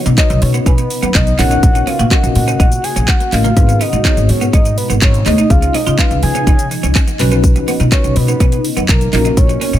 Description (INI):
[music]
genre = dance-pop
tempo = 124 BPM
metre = 4/4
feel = straight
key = unclear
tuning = A4 = 438 Hz
[part]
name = mellow tine electric piano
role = accompaniment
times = 0.0-9.7 s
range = A#3 to D#5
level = -21 LUFS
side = left 1 dB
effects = medium stereo tremolo, sidechain pumping
[part]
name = shimmering ambient pad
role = sustained chords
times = 0.0-9.8 s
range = B2 to F#4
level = -22 LUFS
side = equal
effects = chorus, built-in reverb, phaser, sidechain pumping
[part]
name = twelve-string electric guitar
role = riff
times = 0.1-9.8 s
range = A#3 to F#4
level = -23 LUFS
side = right 6 dB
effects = lush chorus
[part]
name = upright bass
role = bass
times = 0.1-9.8 s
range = G#1 to C#3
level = -15 LUFS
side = equal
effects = sidechain pumping
[part]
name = house drum kit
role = drums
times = 0.1-9.8 s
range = handclaps, hi-hat, kick drum, shaker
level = -14 LUFS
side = equal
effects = none
[part]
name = soft octave-layered synth lead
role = melody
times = 0.2-9.8 s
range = A#4 to G#5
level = -20 LUFS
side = left 2 dB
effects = chorus, tremolo, digital delay
[sound]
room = little or no reverb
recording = none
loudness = -10 LUFS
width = side -12 dB against mid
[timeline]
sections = 0.0-9.8 A section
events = none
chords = 0.0 Badd9; 1.4 F#/A#; 3.6 G#m; 5.5 C#add9; 7.2 Badd9; 9.1 F#/A#